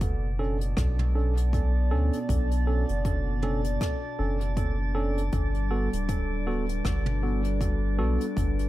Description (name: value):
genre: ambient dub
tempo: 79 BPM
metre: 4/4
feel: swing 58% on 16ths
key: B minor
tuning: A4 = 436 Hz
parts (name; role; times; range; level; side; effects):
- warbly tape-like pad; sustained chords; 0.0-8.7 s; B2 to D5; -34 LUFS; left 1 dB; chorus, built-in reverb
- soft dub sub bass; bass; 0.0-8.7 s; D1 to D2; -26 LUFS; equal; none
- electronic kick drum; drums; 0.0-8.5 s; none; -30 LUFS; equal; none
- jazz brush drum kit; drums; 0.0-8.7 s; hi-hat, rim click, toms; -38 LUFS; equal; dub echo
- drifting glass-harmonics texture; texture; 0.0-8.7 s; D4 to D5; -38 LUFS; right 3 dB; chorus, built-in reverb
- tine electric piano; stabs; 0.4-8.3 s; B3 to A4; -34 LUFS; right 2 dB; dub echo
room: small room reverb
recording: echo-heavy mix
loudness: -24 LUFS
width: side -15 dB against mid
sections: 0.0-8.7 A section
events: none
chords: 0.0 Bm9; 5.3 Gmaj9